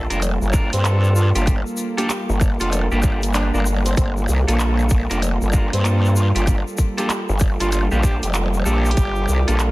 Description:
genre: glitch hop.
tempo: 96 BPM.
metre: 4/4.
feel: swing 63% on 16ths.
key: G minor.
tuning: A4 = 440 Hz.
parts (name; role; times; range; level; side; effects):
warm analog pad; sustained chords; 0.0-9.7 s; G3 to D5; -28 LUFS; right 1 dB; chorus, sidechain pumping.
clean electric guitar; stabs; 0.0-9.7 s; Bb3 to C5; -26 LUFS; right 1 dB; vintage 12-bit sampler grit, sidechain pumping, ping-pong delay.
growl bass; bass; 0.0-9.7 s; F1 to G2; -19 LUFS; equal; chorus.
drum and bass drum kit; drums; 0.1-9.7 s; handclaps, hi-hat, rim click; -27 LUFS; right 1 dB; none.
egg shaker; percussion; 0.1-9.7 s; none; -34 LUFS; left 3 dB; none.
electronic kick drum; drums; 0.5-9.1 s; none; -18 LUFS; equal; none.
warm tenor saxophone; melody; 0.7-9.6 s; C4 to G4; -28 LUFS; equal; vintage 12-bit sampler grit, ping-pong delay.
room: digital ambience.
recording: dense, heavily limited modern master, vinyl crackle.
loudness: -16 LUFS.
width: side -19 dB against mid.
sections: 0.0-9.7 A section.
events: none.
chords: 0.0 Gm9.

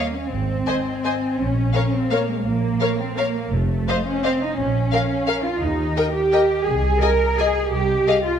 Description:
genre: classical, orchestral ballroom waltz.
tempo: 170 BPM.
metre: 3/4.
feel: uneven beats, rubato.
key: unclear.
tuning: A4 = 439 Hz.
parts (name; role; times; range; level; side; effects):
bright symphonic violin section; melody; 0.0-8.2 s; F5 to Ab5; -31 LUFS; left 6 dB; none.
warm symphonic violin section; second line; 0.0-8.2 s; Db5 to F5; -27 LUFS; left 5 dB; none.
warm symphonic viola section; accompaniment; 0.0-8.2 s; Ab4 to C5; -28 LUFS; equal; none.
warm symphonic cello section; bass; 0.0-8.4 s; Ab3 to Bb4; -22 LUFS; right 2 dB; none.
warm symphonic double bass section; bass; 0.3-8.0 s; F1 to Eb2; -24 LUFS; right 1 dB; none.
room: moderate concert hall reverb, RT60 2.0 s.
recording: dark, warm production.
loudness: -18 LUFS.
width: side -8 dB against mid.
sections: 0.0-8.4 A section.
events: none.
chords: 0.3 Ab; 1.4 Bbm; 3.5 F7; 4.6 Bbm; 5.6 Eb; 6.7 Ab/C; 7.7 F5/C.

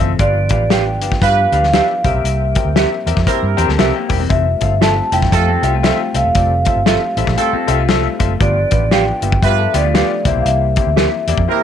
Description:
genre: uptempo 1960s-style soul.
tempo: 117 BPM.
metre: 4/4.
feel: swing 60% on 8ths.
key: F major.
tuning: A4 = 439 Hz.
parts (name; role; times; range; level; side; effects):
clear upright piano; accompaniment; 0.0-11.6 s; G2 to G5; -22 LUFS; left 11 dB; none.
percussive tonewheel organ; sustained chords; 0.0-11.6 s; C3 to A4; -28 LUFS; right 2 dB; fast rotary speaker, chorus vibrato.
electric guitar through a small old amp; riff; 0.0-0.2, 3.6-10.2 s; E3 to Bb4; -24 LUFS; left 12 dB; none.
vintage muted fingered electric bass; bass; 0.0-11.5 s; E1 to G2; -17 LUFS; right 2 dB; none.
vibraphone with soft mallets; melody; 0.2-11.6 s; D5 to A5; -18 LUFS; left 1 dB; none.
warm soul drum kit; drums; 0.2-11.5 s; hi-hat, kick drum, snare drum; -18 LUFS; left 2 dB; none.
mellow electric guitar; stabs; 0.7-11.1 s; F4 to F5; -19 LUFS; right 13 dB; tremolo.
clear horn section; second line; 1.2-11.6 s; A3 to B4; -19 LUFS; right 15 dB; none.
room: light reverb.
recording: 1960s-style stereo with parts hard left and right.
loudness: -12 LUFS.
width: side -9 dB against mid.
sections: 0.0-11.6 A section.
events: none.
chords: 0.2 G7; 2.0 C7; 4.3 Fmaj7; 8.4 G7; 10.2 C7.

